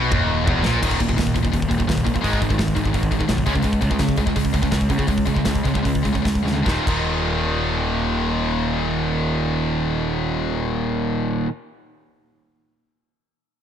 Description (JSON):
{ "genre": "heavy metal", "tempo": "143-172 BPM", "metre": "4/4", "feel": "straight", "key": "unclear", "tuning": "A4 = 440 Hz", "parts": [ { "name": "distorted electric guitar", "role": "riff", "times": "0.0-11.5 s", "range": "Eb2 to Db4", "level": "-24 LUFS", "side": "right 8 dB", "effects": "overdrive" }, { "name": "tight distorted guitar", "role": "riff", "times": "0.0-11.5 s", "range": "Eb2 to Db4", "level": "-24 LUFS", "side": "left 10 dB", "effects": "distortion" }, { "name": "fuzz picked electric bass", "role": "bass", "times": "0.0-11.5 s", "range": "Eb1 to Db3", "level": "-25 LUFS", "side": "equal", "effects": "overdrive" }, { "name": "tight metal drum kit", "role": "drums", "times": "0.1-7.0 s", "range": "crash cymbal, hi-hat, kick drum, snare drum, toms", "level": "-24 LUFS", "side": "equal", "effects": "none" } ], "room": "small room ambience", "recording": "dark, warm production", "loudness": "-18 LUFS", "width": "side -9 dB against mid", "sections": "0.8-6.6 A section; 6.6-10.0 B section", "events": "drum fill 0.0-0.8, 6.4; slowing down 3.6-6.6", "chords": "0.0 Eb5; 2.2 Ab5; 3.5 Db5; 6.6 Eb5" }